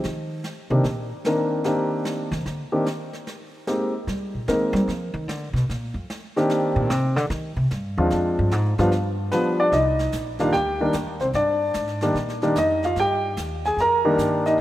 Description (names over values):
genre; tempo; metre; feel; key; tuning
jazz piano trio; 148 BPM; 4/4; swing 66% on 8ths; C minor; A4 = 444 Hz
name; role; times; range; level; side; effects
warm upright piano; melody; 0.0-14.6 s; Eb3 to Bb5; -22 LUFS; equal; none
upright bass; bass; 0.0-14.6 s; Bb1 to G3; -25 LUFS; equal; none
jazz brush drum kit; drums; 0.0-14.6 s; brushed snare drum, hi-hat, snare drum; -38 LUFS; right 1 dB; none
room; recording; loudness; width
moderate lush hall reverb, RT60 2.4 s; rough home demo mix; -20 LUFS; side -14 dB against mid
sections
0.0-9.7 A section; 9.7-14.6 B section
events
upright bass solo 0.0-9.7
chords
0.0 Cm9; 3.3 Abmaj7; 4.9 G7#9 (rootless); 6.5 Cm9; 8.1 Dm7b5; 8.9 G7; 9.7 Cm9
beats
| 0.04 0.44 0.84 1.25 | 1.65 2.06 2.46 2.86 | 3.27 3.67 4.07 4.48 | 4.88 5.28 5.69 6.09 | 6.50 6.90 7.30 7.71 | 8.11 8.52 8.92 9.32 | 9.73 10.13 10.54 10.94 | 11.35 11.76 12.16 12.56 | 12.97 13.38 13.78 14.19 | 14.59